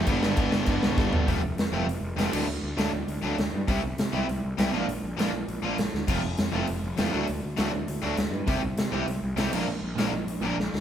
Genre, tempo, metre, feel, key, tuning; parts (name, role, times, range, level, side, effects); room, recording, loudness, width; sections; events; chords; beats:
punk rock; 200 BPM; 4/4; straight; A4 = 441 Hz
crunchy overdriven guitar; riff; 0.0-10.6 s; F2 to E4; -31 LUFS; right 4 dB
distorted electric guitar; riff; 0.0-10.6 s; F2 to Bb4; -32 LUFS; left 6 dB; overdrive
scooped high-gain guitar; riff; 0.0-1.3 s; G2 to D4; -33 LUFS; left 2 dB; distortion
fuzz picked electric bass; bass; 0.1-10.8 s; F1 to C3; -32 LUFS; equal; overdrive
big rock drum kit; drums; 0.1-10.8 s; crash cymbal, hi-hat, kick drum, snare drum, toms; -28 LUFS; equal
moderate stone room reverb, RT60 1.3 s; band playing live in one room; -25 LUFS; side -10 dB against mid
0.0-1.3 A section; 1.3-10.8 B section
drum fill 1.0, 5.9, 10.6; half time 1.3-10.8
0.1 G; 1.3 F; 2.3 D; 3.7 C; 4.7 Bb; 6.1 F; 7.1 D; 8.5 C; 9.5 Bb
| 0.08 0.38 0.68 0.97 | 1.27 1.57 1.87 2.17 | 2.47 2.77 3.07 3.37 | 3.67 3.97 4.27 4.57 | 4.87 5.17 5.47 5.77 | 6.07 6.37 6.67 6.97 | 7.27 7.57 7.87 8.17 | 8.47 8.77 9.07 9.37 | 9.67 9.97 10.27 10.57